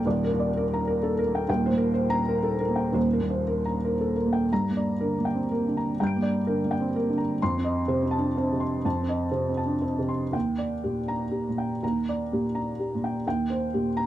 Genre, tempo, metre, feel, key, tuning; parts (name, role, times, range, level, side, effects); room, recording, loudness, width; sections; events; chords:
neoclassical minimalist piano; 113-128 BPM; 3/4; rubato; G minor; A4 = 440 Hz
felt-muted upright piano; solo; 0.0-14.1 s; Eb1 to D7; -24 LUFS; equal
moderate booth ambience, RT60 0.2 s; dry, close 1970s-style studio recording; -24 LUFS; side -13 dB against mid
0.0-4.5 A section; 4.5-14.1 B section
0.0 Ebmaj7; 1.5 Cm7/Eb; 4.5 Gm; 7.4 F7; 10.3 Ebmaj7; 13.2 Cm7/Eb